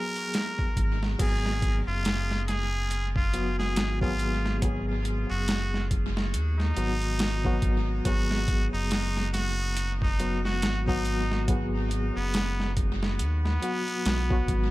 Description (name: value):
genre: trip hop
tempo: 70 BPM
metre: 4/4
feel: swing 58% on 16ths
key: G# dorian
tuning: A4 = 436 Hz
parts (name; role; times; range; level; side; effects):
- trumpet with straight mute; melody; 0.0-14.7 s; B3 to A#4; -32 LUFS; equal; dub echo
- overdriven reed electric piano; accompaniment; 0.0-14.7 s; F#3 to G#4; -33 LUFS; left 1 dB; fast tremolo, tape echo
- boom bap sampler-style drum kit; drums; 0.2-14.7 s; crash cymbal, hi-hat, kick drum, snare drum; -29 LUFS; equal; overdrive, tape echo
- round analog bass; bass; 0.8-14.7 s; F#1 to D#2; -28 LUFS; equal; none
room: digital ambience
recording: echo-heavy mix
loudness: -25 LUFS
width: side -18 dB against mid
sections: 0.0-1.2 A section; 1.2-14.7 B section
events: none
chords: 0.0 G#m7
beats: 0.34 | 1.20 2.05 2.91 3.77 | 4.62 5.48 6.34 7.20 | 8.05 8.91 9.77 10.62 | 11.48 12.34 13.20 14.05